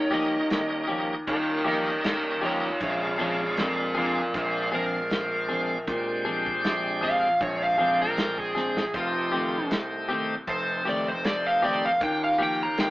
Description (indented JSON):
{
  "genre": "straight-eighth soul blues",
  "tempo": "78 BPM",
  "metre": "4/4",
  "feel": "swing 54% on 16ths",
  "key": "Bb mixolydian",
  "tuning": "A4 = 440 Hz",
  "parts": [
    { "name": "overdriven slide guitar", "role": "second line", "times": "0.0-12.9 s", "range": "F4 to Bb5", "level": "-26 LUFS", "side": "equal", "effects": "none" },
    { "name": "bright tonewheel organ", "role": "accompaniment", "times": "0.0-12.9 s", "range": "C3 to G5", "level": "-30 LUFS", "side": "equal", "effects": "slow rotary speaker, overdrive" },
    { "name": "dark baby grand piano", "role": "bass", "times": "0.0-12.9 s", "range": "F1 to Eb3", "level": "-31 LUFS", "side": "equal", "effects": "none" },
    { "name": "clean electric guitar", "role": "stabs", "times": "0.1-12.6 s", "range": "Eb3 to Ab4", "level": "-30 LUFS", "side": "left 1 dB", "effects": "none" },
    { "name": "warm soul drum kit", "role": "drums", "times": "0.5-12.9 s", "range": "hi-hat, kick drum, snare drum", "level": "-29 LUFS", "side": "equal", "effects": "none" }
  ],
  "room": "wet studio reverb, RT60 0.5 s",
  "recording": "band playing live in one room, AM radio sound",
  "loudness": "-23 LUFS",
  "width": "side -18 dB against mid",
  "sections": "0.0-12.9 A section",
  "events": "electric slide guitar solo 0.0-12.9; drum fill 8.6-8.9",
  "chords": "0.0 Eb9; 2.8 Bb9; 8.9 F9; 12.0 Eb9",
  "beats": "0.51 1.28 2.04 | 2.81 3.58 4.34 5.11 | 5.88 6.65 7.41 8.18 | 8.95 9.71 10.48 11.25 | 12.01 12.78"
}